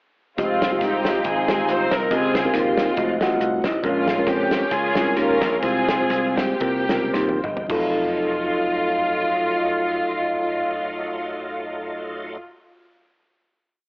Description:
uptempo gospel; 103-139 BPM; 4/4; swing 55% on 8ths; F minor; A4 = 440 Hz
warm studio string section; melody; 0.4-12.4 s; Ab3 to C5; -23 LUFS; equal
mellow tine electric piano; accompaniment; 0.4-12.4 s; F2 to C6; -25 LUFS; equal; medium stereo tremolo, cassette tape
bright tonewheel organ; sustained chords; 0.4-12.4 s; E3 to G5; -34 LUFS; equal
dark French horn section; sustained chords; 0.4-12.4 s; Gb3 to F5; -29 LUFS; equal; cassette tape
dry thumbed slap bass; bass; 0.4-12.4 s; F1 to F2; -27 LUFS; equal
natural country drum kit; drums; 0.4-7.8 s; crash cymbal, hi-hat, kick drum, snare drum, toms; -27 LUFS; equal; cassette tape
light reverb, small room ambience; home recording on cassette, telephone sound; -19 LUFS; side -33 dB against mid
0.4-7.7 breakdown; 7.7-12.3 final chord
slowing down 3.8-7.7; tine electric piano fill 6.9-7.7; drum fill 7.1-7.7
0.4 Fm9; 2.1 Dbmaj9#11; 3.0 F7b9; 3.8 Bbm7; 5.6 Fm/C; 6.6 C7sus4; 7.7 F7b9

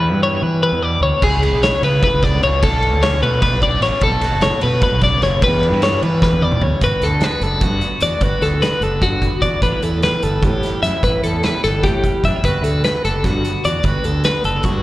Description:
math rock and midwest emo; 299 BPM (eighths); 7/8; straight; G lydian; A4 = 439 Hz
twangy electric guitar; accompaniment; 0.0-14.8 s; D2 to G#4; -26 LUFS; right 6 dB; slapback echo
twelve-string electric guitar; arpeggios; 0.0-14.8 s; F#4 to E5; -18 LUFS; left 2 dB; tremolo, slapback echo
fuzz fingered electric bass; bass; 0.0-14.8 s; F#1 to E3; -19 LUFS; equal; overdrive
loose indie drum kit; drums; 1.2-14.7 s; crash cymbal, hi-hat, kick drum, ride cymbal, snare drum, toms; -21 LUFS; right 1 dB
small room reverb; live gig heard through the venue's PA, recital hall reverb; -14 LUFS; side -16 dB against mid
0.0-6.8 A section; 6.8-14.8 B section
drum fill 6.2-6.8
0.0 Em7; 1.2 C#m7; 2.6 Bm9; 4.0 Gmaj9 (rootless); 5.4 Em9; 6.8 Gmaj9; 9.6 Asus2; 12.4 Gmaj9

